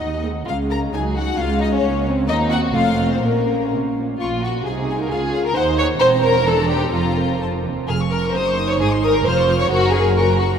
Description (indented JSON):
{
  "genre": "quick classical-period movement for string orchestra",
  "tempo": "131 BPM",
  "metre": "2/4",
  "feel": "rubato",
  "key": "Bb minor",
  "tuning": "A4 = 440 Hz",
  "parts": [
    { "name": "warm studio violin section", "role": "melody", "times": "0.0-10.6 s", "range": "Bb4 to F6", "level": "-26 LUFS", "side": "left 6 dB", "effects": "none" },
    { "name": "warm studio violin section", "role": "second line", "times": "0.0-10.5 s", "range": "Bb3 to Db5", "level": "-20 LUFS", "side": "left 1 dB", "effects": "none" },
    { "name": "warm studio cello section", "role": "bass", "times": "0.0-10.6 s", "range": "Db2 to Db3", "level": "-25 LUFS", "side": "right 3 dB", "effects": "none" },
    { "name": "warm studio double bass section", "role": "bass", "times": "0.0-10.6 s", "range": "E1 to Eb2", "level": "-25 LUFS", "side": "right 3 dB", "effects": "none" },
    { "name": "dark studio viola section", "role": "accompaniment", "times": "0.2-10.6 s", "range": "Gb3 to Bb4", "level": "-23 LUFS", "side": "right 1 dB", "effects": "none" }
  ],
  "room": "wet cathedral reverb, RT60 5.5 s",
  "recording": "in a vast, echoing space",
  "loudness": "-16 LUFS",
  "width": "side -7 dB against mid",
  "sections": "0.0-4.2 A section; 4.2-10.6 B section",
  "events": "none",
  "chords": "0.5 Db5; 0.9 Gb5/Db; 1.4 Db; 1.8 Bbmadd9/Db; 2.3 Cm7b5/Eb; 2.8 F; 3.2 Bbm; 4.7 Ab/C; 5.1 Db; 5.6 N.C.; 6.0 C7/E; 6.9 Fsus4; 7.4 F5; 7.9 Db/F; 8.3 Ebm7/Gb; 8.8 Ab; 9.3 Db/F; 9.7 Gb"
}